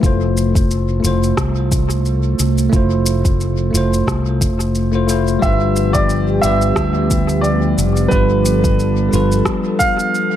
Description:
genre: sunset chillout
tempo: 89 BPM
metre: 4/4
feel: swing 55% on 16ths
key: F lydian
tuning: A4 = 445 Hz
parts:
  - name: bell-like tine electric piano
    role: accompaniment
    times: 0.0-10.4 s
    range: G3 to C5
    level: -19 LUFS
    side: moving between left 7 dB and right 6 dB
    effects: auto-pan, dub echo
  - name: airy breathy pad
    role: sustained chords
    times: 0.0-10.4 s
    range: F3 to A4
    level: -23 LUFS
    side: equal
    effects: chorus
  - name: mellow fretless electric bass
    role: bass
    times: 0.0-9.4 s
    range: F1 to D2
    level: -17 LUFS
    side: equal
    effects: ensemble chorus
  - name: electronic kick drum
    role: drums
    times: 0.0-10.0 s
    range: none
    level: -18 LUFS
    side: equal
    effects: small room reverb
  - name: electronic shaker and rim click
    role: drums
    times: 0.0-10.3 s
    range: none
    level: -25 LUFS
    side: equal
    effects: small room reverb, dub echo
  - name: warm baby grand piano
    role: melody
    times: 5.4-10.4 s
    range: B4 to F5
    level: -19 LUFS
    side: right 1 dB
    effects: dub echo
room: moderate spring reverb, RT60 1.8 s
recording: echo-heavy mix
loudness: -13 LUFS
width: side -11 dB against mid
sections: 0.0-10.4 A section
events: none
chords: 0.0 Fmaj7; 5.4 G7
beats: | 0.03 0.70 1.38 2.05 | 2.73 3.40 4.08 4.75 | 5.42 6.10 6.77 7.45 | 8.12 8.79 9.47 10.14

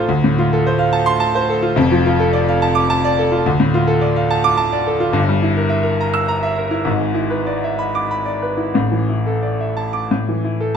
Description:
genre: classical, romantic character piece for solo piano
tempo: 86-110 BPM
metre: 3/4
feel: rubato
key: unclear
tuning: A4 = 440 Hz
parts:
  - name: bright grand piano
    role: solo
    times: 0.0-10.8 s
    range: F1 to E6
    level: -15 LUFS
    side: equal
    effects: none
room: moderate recital hall reverb, RT60 1.7 s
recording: close, detailed microphones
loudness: -15 LUFS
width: side -7 dB against mid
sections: 0.0-10.8 A section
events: none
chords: 0.1 Dm7; 1.8 Dm/F; 3.5 Dm; 5.2 Edim/G; 6.9 E7/G#; 8.8 Asus4; 10.1 A5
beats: | 0.07 0.64 1.20 | 1.77 2.34 2.90 | 3.47 4.03 4.59 | 5.17 5.73 6.30 | 6.88 7.48 8.10 | 8.75 9.44 10.12 | 10.76

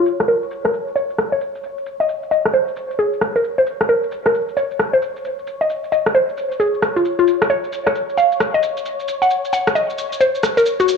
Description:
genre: UK garage, two-step garage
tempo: 133 BPM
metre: 4/4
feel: swing 63% on 16ths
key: unclear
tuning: A4 = 440 Hz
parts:
  - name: mallet-like synth pluck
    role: melody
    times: 0.0-11.0 s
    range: F4 to Gb5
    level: -17 LUFS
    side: left 1 dB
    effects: chorus, cassette tape, analog delay
  - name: soft string machine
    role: sustained chords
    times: 0.0-11.0 s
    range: Db5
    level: -27 LUFS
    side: left 1 dB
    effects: phaser, ensemble chorus
  - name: electronic shaker and rim click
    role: drums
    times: 0.1-11.0 s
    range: none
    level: -22 LUFS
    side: equal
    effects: low-pass filter on snare, low-pass filter on perc
room: moderate plate reverb, RT60 2.1 s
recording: dry, gritty hardware recording, transformer saturation, low-pass filter, small room ambience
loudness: -16 LUFS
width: side -5 dB against mid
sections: 0.0-11.0 A section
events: filter sweep on drum 0.0-11.0; filter sweep on string machine 0.0-11.0; filter sweep 0.0-11.0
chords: none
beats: | 0.28 0.73 1.19 1.64 | 2.09 2.54 2.99 3.44 | 3.89 4.34 4.79 5.25 | 5.70 6.15 6.60 7.05 | 7.50 7.95 8.40 8.85 | 9.30 9.76 10.21 10.66

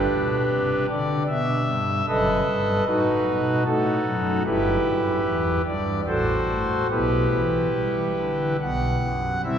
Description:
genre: classical, chorale-style piece for pipe organ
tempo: 69-77 BPM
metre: 3/4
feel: straight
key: E minor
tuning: A4 = 440 Hz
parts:
  - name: pipe organ, foundations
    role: solo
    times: 0.0-9.6 s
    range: F#1 to F#5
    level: -20 LUFS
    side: equal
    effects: none
room: wet cathedral reverb, RT60 4.5 s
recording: recorded in a church or concert hall, nothing above 10.9 kHz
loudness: -20 LUFS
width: side -8 dB against mid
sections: 0.0-9.4 A section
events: none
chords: 0.0 G; 2.1 B7/F#; 4.5 Em/G; 6.1 F#dim/A; 6.9 Em/B; 8.6 B5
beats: 0.51 1.29 | 2.08 2.87 3.66 | 4.46 5.25 6.07 | 6.89 7.74 8.60 | 9.43

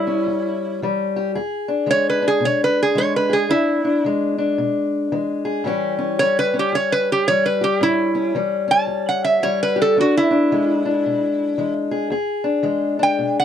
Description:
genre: acoustic country blues, solo or duo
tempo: 112 BPM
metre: 4/4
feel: swing 63% on 8ths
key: E mixolydian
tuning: A4 = 440 Hz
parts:
  - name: metal-body resonator slide guitar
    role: melody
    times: 0.0-13.4 s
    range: E4 to A5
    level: -18 LUFS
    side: right 3 dB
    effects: none
  - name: fingerpicked steel-string acoustic guitar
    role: accompaniment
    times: 0.0-13.4 s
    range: E2 to G#4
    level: -20 LUFS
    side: left 3 dB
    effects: none
room: little or no reverb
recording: dry, close 1970s-style studio recording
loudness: -17 LUFS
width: side -9 dB against mid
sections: 0.0-13.4 A section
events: resonator guitar played with a steel bar solo 0.0-13.4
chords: 0.0 A7 (rootless); 1.4 E7; 5.7 A7; 10.0 E7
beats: 0.29 0.82 | 1.36 1.89 2.43 2.97 | 3.50 4.04 4.58 5.11 | 5.65 6.19 6.73 7.27 | 7.80 8.34 8.88 9.42 | 9.96 10.50 11.04 11.57 | 12.11 12.65 13.19

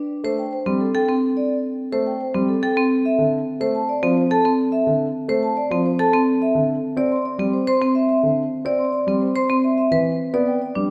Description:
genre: classical, minimalist pattern music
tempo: 107 BPM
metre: 3/4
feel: straight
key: D dorian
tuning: A4 = 439 Hz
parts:
  - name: warm concert grand piano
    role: accompaniment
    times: 0.2-10.9 s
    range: D3 to C4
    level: -28 LUFS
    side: equal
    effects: none
  - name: marimba with hard mallets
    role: arpeggios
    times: 0.2-10.9 s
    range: C4 to D5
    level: -23 LUFS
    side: equal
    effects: none
  - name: vibraphone with soft mallets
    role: melody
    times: 0.4-10.8 s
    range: A4 to C6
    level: -26 LUFS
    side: equal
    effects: none
room: moderate scoring stage reverb, RT60 2.0 s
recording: none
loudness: -20 LUFS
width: mono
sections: 0.0-10.9 A section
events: none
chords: 0.0 Am7; 3.0 Dm; 6.4 Csus2; 9.8 G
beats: 0.24 0.80 | 1.36 1.93 2.48 | 3.05 3.61 4.17 | 4.73 5.29 5.85 | 6.41 6.97 7.53 | 8.09 8.65 9.21 | 9.78 10.34 10.90

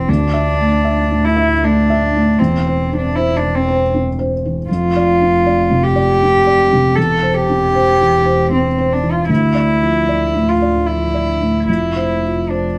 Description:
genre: neoclassical piano and strings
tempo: 78 BPM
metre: 3/4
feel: rubato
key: F major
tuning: A4 = 440 Hz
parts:
  - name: warm cello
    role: second line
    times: 0.0-12.8 s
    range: C4 to A4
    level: -18 LUFS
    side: equal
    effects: none
  - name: felt-muted upright piano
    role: accompaniment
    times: 0.0-12.8 s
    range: D2 to E5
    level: -19 LUFS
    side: equal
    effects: none
  - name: dark double bass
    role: bass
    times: 0.0-12.8 s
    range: E1 to D2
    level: -24 LUFS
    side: equal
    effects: none
room: moderate studio reverb, RT60 0.9 s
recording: band playing live in one room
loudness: -15 LUFS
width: mono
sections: 0.0-12.8 A section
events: none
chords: 0.1 Dsus2; 2.4 C/E; 4.7 F5; 7.0 C/E; 9.3 Dmadd9; 11.7 F5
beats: | 0.08 0.85 1.61 | 2.39 3.16 3.92 | 4.68 5.44 6.20 | 6.96 7.74 8.52 | 9.29 10.08 10.88 | 11.68 12.48

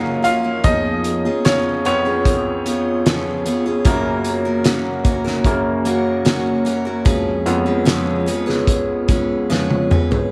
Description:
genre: pop ballad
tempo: 74 BPM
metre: 4/4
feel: straight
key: unclear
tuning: A4 = 440 Hz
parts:
  - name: bright grand piano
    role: accompaniment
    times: 0.0-10.3 s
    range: F2 to F5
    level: -25 LUFS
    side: equal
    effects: none
  - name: glass harmonica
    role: sustained chords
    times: 0.0-10.3 s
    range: Bb3 to Db5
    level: -24 LUFS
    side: equal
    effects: none
  - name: picked steel-string acoustic guitar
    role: arpeggios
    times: 0.0-10.3 s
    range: F2 to Cb5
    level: -25 LUFS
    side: equal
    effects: none
  - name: loose indie drum kit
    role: drums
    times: 0.2-10.3 s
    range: hi-hat, kick drum, snare drum, toms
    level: -21 LUFS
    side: equal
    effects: none
room: moderate spring reverb, RT60 2.8 s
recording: none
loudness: -18 LUFS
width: mono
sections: 0.0-10.3 A section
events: grand piano solo 0.0-10.3; drum fill 9.5-10.3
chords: 0.0 Gb; 0.6 Db7/F; 3.9 Gb; 7.1 Db7/F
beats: | 0.64 1.45 2.26 3.06 | 3.86 4.65 5.45 6.25 | 7.05 7.86 8.68 9.50

